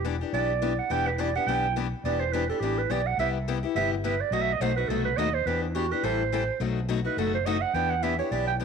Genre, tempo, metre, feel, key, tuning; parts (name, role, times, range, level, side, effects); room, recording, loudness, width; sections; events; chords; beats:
acoustic string swing (jazz manouche); 210 BPM; 4/4; swing 57% on 8ths; E minor; A4 = 440 Hz
growling clarinet; second line; 0.0-8.6 s; D4 to G5; -28 LUFS; right 9 dB
picked steel-string acoustic guitar; accompaniment; 0.0-8.6 s; B2 to A4; -30 LUFS; left 11 dB
fretless electric bass; bass; 0.0-8.6 s; E1 to E2; -31 LUFS; equal; wide subtle chorus
moderate echo chamber reverb, RT60 1.7 s, studio reverb; 1960s-style stereo with parts hard left and right; -24 LUFS; side -6 dB against mid
0.0-7.7 A section
clarinet solo 0.0-8.6
0.0 Em7; 3.2 Cmaj7; 4.3 B7b9; 5.5 Em7; 6.0 Am7; 6.6 B7; 7.7 Em7
0.04 0.33 0.61 | 0.90 1.19 1.47 1.75 | 2.04 2.32 2.61 2.89 | 3.18 3.46 3.75 4.03 | 4.32 4.60 4.89 5.17 | 5.46 5.74 6.03 6.32 | 6.60 6.89 7.17 7.46 | 7.74 8.03 8.32 8.60